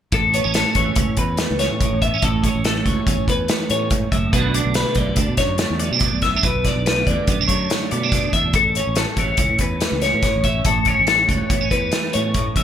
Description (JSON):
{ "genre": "math rock and midwest emo", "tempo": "142 BPM", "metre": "5/4", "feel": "straight", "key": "A major", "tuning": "A4 = 440 Hz", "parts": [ { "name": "clean electric guitar", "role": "accompaniment", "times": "0.1-12.6 s", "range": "E2 to F#4", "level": "-23 LUFS", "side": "right 7 dB", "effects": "ensemble chorus" }, { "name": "twelve-string electric guitar", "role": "arpeggios", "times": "0.1-12.6 s", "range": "A4 to E5", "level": "-21 LUFS", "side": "left 3 dB", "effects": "phaser" }, { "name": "fingered electric bass", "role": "bass", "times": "0.1-12.6 s", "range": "F#1 to B2", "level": "-24 LUFS", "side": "equal", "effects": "none" }, { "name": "loose indie drum kit", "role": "drums", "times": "0.1-12.6 s", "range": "hi-hat, kick drum, snare drum", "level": "-21 LUFS", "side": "equal", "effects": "gated reverb" } ], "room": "moderate plate reverb, RT60 1.3 s, small room ambience", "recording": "bright 1980s-style digital production", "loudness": "-16 LUFS", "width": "side -9 dB against mid", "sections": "0.1-12.6 A section", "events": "none", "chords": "0.1 A; 4.3 Bm7; 8.5 A" }